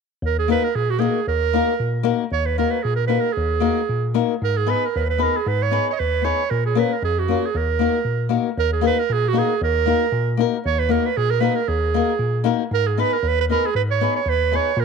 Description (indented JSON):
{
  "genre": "balkan folk, Balkan wedding band",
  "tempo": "116 BPM",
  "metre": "2/4",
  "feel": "straight",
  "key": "Eb minor",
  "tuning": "A4 = 445 Hz",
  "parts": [
    { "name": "bell-like tine electric piano", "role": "bass", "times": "0.2-14.8 s", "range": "Eb2 to Bb2", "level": "-23 LUFS", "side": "left 1 dB", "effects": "none" },
    { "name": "clear clarinet", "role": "melody", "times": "0.3-14.8 s", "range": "Gb4 to Eb5", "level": "-22 LUFS", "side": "right 11 dB", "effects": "none" },
    { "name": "flamenco guitar", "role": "accompaniment", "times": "0.5-14.7 s", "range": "Bb3 to Cb5", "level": "-23 LUFS", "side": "left 13 dB", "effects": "none" }
  ],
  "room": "light reverb",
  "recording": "1960s-style stereo with parts hard left and right",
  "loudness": "-18 LUFS",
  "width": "side -5 dB against mid",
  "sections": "0.2-8.6 A section; 8.6-14.8 A section",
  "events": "none",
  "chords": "0.2 Ebm; 4.4 Abm; 6.5 Bbm; 7.5 Ebm; 12.7 Abm",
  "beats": "| 0.23 0.75 | 1.28 1.80 | 2.33 2.85 | 3.38 3.90 | 4.42 4.94 | 5.46 5.98 | 6.50 7.02 | 7.54 8.05 | 8.57 9.09 | 9.61 10.12 | 10.64 11.16 | 11.67 12.19 | 12.71 13.23 | 13.74 14.26 | 14.78"
}